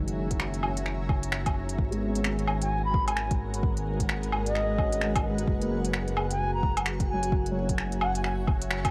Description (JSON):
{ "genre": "future garage", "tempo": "130 BPM", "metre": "4/4", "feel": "swing 61% on 16ths", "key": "unclear", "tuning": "A4 = 440 Hz", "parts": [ { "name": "dark upright piano", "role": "accompaniment", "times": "0.0-8.9 s", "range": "C#3 to C#4", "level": "-38 LUFS", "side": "equal", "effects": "sidechain pumping, tape echo" }, { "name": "granular cloud pad", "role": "sustained chords", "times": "0.0-8.9 s", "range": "G#3 to A#5", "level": "-38 LUFS", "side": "equal", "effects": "built-in reverb, vintage 12-bit sampler grit, sidechain pumping" }, { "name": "dark detuned saw bass", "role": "bass", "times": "0.0-8.9 s", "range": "F#1 to G#1", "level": "-34 LUFS", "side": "equal", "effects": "sidechain pumping" }, { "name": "organic electronic drum kit", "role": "drums", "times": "0.1-8.9 s", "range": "finger snaps, hi-hat, woodblock", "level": "-34 LUFS", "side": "equal", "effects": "none" }, { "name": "electronic kick drum", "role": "drums", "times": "0.3-8.9 s", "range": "none", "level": "-30 LUFS", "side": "equal", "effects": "none" }, { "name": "backwards swelling texture", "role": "texture", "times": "2.7-8.9 s", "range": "F#4 to F#5", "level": "-43 LUFS", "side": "equal", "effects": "built-in reverb" }, { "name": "bright reedy baroque flute", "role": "melody", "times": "2.6-8.3 s", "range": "D#5 to B5", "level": "-35 LUFS", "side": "equal", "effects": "analog delay" } ], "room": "light reverb, digital ambience", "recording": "vinyl crackle", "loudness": "-28 LUFS", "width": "mono", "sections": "0.0-8.9 A section", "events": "band accent 8.7", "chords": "0.0 F#7; 1.8 G#m7; 5.5 F#7", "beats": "0.40 0.86 1.32 | 1.78 2.25 2.71 3.17 | 3.63 4.09 4.55 5.01 | 5.48 5.94 6.40 6.86 | 7.32 7.78 8.25 8.71" }